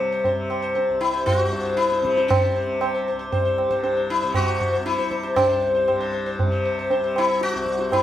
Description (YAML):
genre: indian classical, Hindustani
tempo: 117 BPM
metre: 3/4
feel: straight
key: C major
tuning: A4 = 440 Hz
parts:
  - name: sitar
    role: melody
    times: 0.0-8.0 s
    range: Db4 to C5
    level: -22 LUFS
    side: left 3 dB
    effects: none
  - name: tanpura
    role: drone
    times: 0.0-8.0 s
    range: C2 to C3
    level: -29 LUFS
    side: equal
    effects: none
  - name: tabla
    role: percussion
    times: 0.2-8.0 s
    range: none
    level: -24 LUFS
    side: right 3 dB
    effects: none
room: moderate studio reverb, RT60 0.5 s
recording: band playing live in one room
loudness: -19 LUFS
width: side -11 dB against mid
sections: 0.0-8.0 A section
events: none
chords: none